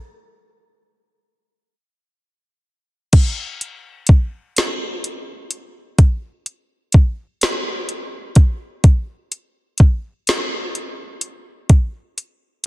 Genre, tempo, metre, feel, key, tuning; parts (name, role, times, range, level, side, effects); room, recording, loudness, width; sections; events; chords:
R&B; 42 BPM (dotted quarters); 6/8; straight
smooth R&B drum kit; drums; 3.1-12.7 s; crash cymbal, hi-hat, kick drum, snare drum; -13 LUFS; equal
light reverb; dense, heavily limited modern master; -15 LUFS; side -18 dB against mid
0.3-3.1 A section; 3.1-12.7 B section
drums muted 0.3-3.1